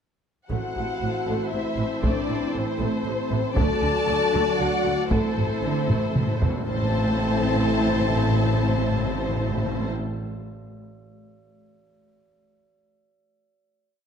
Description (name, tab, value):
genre	cinematic, epic orchestral film score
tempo	117 BPM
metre	3/4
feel	straight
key	A dorian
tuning	A4 = 438 Hz
part	rich symphonic violin section	melody	0.5-9.9 s	C5 to D5	-32 LUFS	left 2 dB	none
part	warm symphonic violin section	second line	0.5-9.9 s	A4 to A5	-31 LUFS	left 3 dB	none
part	warm symphonic viola section	accompaniment	0.5-9.9 s	C3 to F#4	-31 LUFS	right 2 dB	none
part	dark French horn section	sustained chords	0.5-9.9 s	A3 to A4	-29 LUFS	left 6 dB	none
part	warm symphonic string section	sustained chords	0.5-9.9 s	A3 to D5	-32 LUFS	equal	none
part	warm trombone section	sustained chords	0.5-9.9 s	E3 to D4	-32 LUFS	right 2 dB	none
part	rich symphonic double bass section	bass	0.5-9.9 s	A1 to D2	-31 LUFS	right 2 dB	none
part	warm symphonic cello section	bass	0.5-9.9 s	A2 to D3	-30 LUFS	right 2 dB	none
part	taiko ensemble	drums	0.5-6.7 s	none	-26 LUFS	equal	none
part	timpani	percussion	5.1-9.9 s	A2	-30 LUFS	left 1 dB	none
room	moderate scoring stage reverb, RT60 1.8 s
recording	dark, warm production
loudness	-21 LUFS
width	side -7 dB against mid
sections	0.5-6.7 theme; 6.7-9.8 final chord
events	timpani fill 5.1-6.7; drum fill 5.9-6.7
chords	0.5 Am; 3.6 D; 5.1 Am